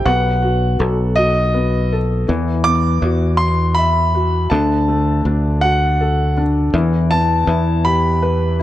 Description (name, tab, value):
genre	six-eight pop ballad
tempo	54 BPM (dotted quarters)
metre	6/8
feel	straight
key	unclear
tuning	A4 = 440 Hz
part	warm concert grand piano	melody	0.0-8.5 s	D#5 to D6	-19 LUFS	equal	slapback echo
part	felt-muted upright piano	accompaniment	0.0-8.6 s	D3 to E5	-20 LUFS	left 3 dB	none
part	fingered electric bass	bass	0.1-8.6 s	B1 to E2	-17 LUFS	equal	none
room	light reverb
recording	dark, warm production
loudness	-14 LUFS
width	side -13 dB against mid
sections	0.0-8.6 A section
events	none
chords	0.1 B7; 2.3 Esus2; 4.5 D; 6.7 Em